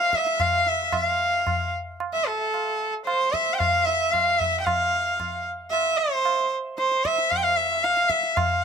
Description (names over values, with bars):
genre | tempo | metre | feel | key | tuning
indian classical, Hindustani | 113 BPM | 7/4 | straight | F raga hamsadhwani | A4 = 441 Hz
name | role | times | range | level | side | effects
bright sarangi | melody | 0.0-8.6 s | A4-23c to G5 | -21 LUFS | equal | none
tabla | percussion | 0.1-8.6 s | none | -30 LUFS | right 1 dB | none
room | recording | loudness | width
light reverb | close, detailed microphones | -21 LUFS | side -6 dB against mid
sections
0.0-8.6 A section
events
none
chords
none